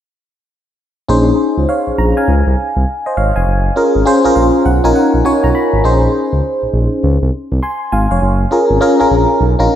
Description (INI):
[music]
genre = R&B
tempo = 101 BPM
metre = 4/4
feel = swing 63% on 16ths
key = Bb minor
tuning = A4 = 440 Hz
[part]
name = FM electric piano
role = accompaniment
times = 1.1-9.8 s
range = Db4 to C6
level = -12 LUFS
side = equal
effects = chorus, phaser, slapback echo
[part]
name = smooth synth bass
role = bass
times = 1.1-9.7 s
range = F1 to Db2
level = -14 LUFS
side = equal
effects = none
[sound]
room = wet lush hall reverb, RT60 1.7 s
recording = big arena sound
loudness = -11 LUFS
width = side -10 dB against mid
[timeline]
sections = 1.1-9.8 A section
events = FM electric piano fill 4.1-5.8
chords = 1.1 Bbm11; 2.3 Dbmaj7; 3.5 Gbmaj7; 4.7 Bmaj9#11; 5.8 Bbm11; 7.0 Dbmaj7; 8.2 Gbmaj7